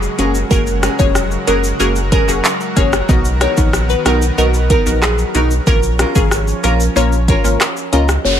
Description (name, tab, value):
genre	dancehall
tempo	93 BPM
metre	4/4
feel	straight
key	unclear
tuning	A4 = 442 Hz
part	glassy wavetable pluck	melody	0.0-8.3 s	G#4 to D#5	-20 LUFS	left 1 dB	chorus, low-pass filter
part	lush unison pad	sustained chords	0.0-8.4 s	C#3 to A#4	-24 LUFS	right 1 dB	chorus, low-pass filter
part	warm sub bass	bass	0.0-8.4 s	E#1 to C#2	-17 LUFS	equal	none
part	afro-pop drum kit	drums	0.0-8.2 s	handclaps, hi-hat, kick drum, rim click, shaker	-16 LUFS	equal	none
part	punchy chord stab	accompaniment	0.2-8.4 s	A#3 to A#4	-20 LUFS	left 1 dB	chorus, low-pass filter
part	nylon-string guitar	arpeggios	0.2-8.1 s	B3 to A#4	-23 LUFS	equal	low-pass filter, ping-pong delay
part	downlifter	sound effects	8.3-8.4 s	none	-15 LUFS	right 1 dB	none
room	little or no reverb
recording	none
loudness	-12 LUFS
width	side -9 dB against mid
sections	0.0-8.2 A section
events	none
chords	0.0 F#add9; 3.1 Bmaj7; 5.7 A#m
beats	| 0.51 1.15 1.80 2.44 | 3.09 3.73 4.38 5.02 | 5.67 6.32 6.96 7.61 | 8.25